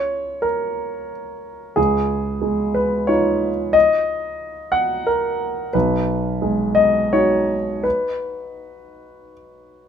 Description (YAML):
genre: neoclassical minimalist piano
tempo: 81-94 BPM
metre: 3/4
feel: rubato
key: unclear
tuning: A4 = 441 Hz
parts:
  - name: warm grand piano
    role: solo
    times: 0.0-9.9 s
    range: Cb2 to Gb5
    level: -18 LUFS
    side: equal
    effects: none
room: light reverb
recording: minimal, uncompressed stereo recording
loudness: -17 LUFS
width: side -8 dB against mid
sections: 0.0-9.9 A section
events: none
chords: 0.0 Bbm/Db; 1.8 Dbadd9; 5.7 Abm7/Cb